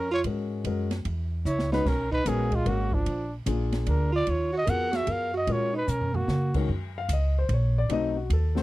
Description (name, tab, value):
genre	jazz, small-group swing and bop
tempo	149 BPM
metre	3/4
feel	swing 65% on 8ths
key	Eb minor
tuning	A4 = 440 Hz
part	warm trumpet	melody	0.0-6.6 s	D4 to Gb5	-29 LUFS	equal	none
part	breathy tenor saxophone	second line	0.0-6.5 s	F3 to Bb4	-31 LUFS	right 3 dB	none
part	upright bass	bass	0.0-8.6 s	Ab1 to Db3	-27 LUFS	equal	none
part	warm baby grand piano	accompaniment	0.2-8.6 s	Eb3 to F5	-31 LUFS	left 6 dB	none
part	open jazz drum kit	drums	0.2-8.6 s	crash cymbal, hi-hat, kick drum, ride cymbal, snare drum, toms	-33 LUFS	right 1 dB	none
room	little or no reverb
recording	dry, close 1970s-style studio recording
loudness	-24 LUFS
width	side -17 dB against mid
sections	0.0-6.7 A section; 6.7-8.6 B section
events	drum fill 1.5-1.9, 5.9-6.3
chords	0.0 Gbmaj9; 0.6 Gb7; 1.9 Bsus2; 3.1 Bb7; 4.3 Ebm9; 6.7 Bbm; 7.9 B7b9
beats	0.24 | 0.65 1.05 1.45 | 1.85 2.26 2.66 | 3.06 3.47 3.87 | 4.27 4.67 5.08 | 5.48 5.88 6.29 | 6.69 7.09 7.49 | 7.89 8.29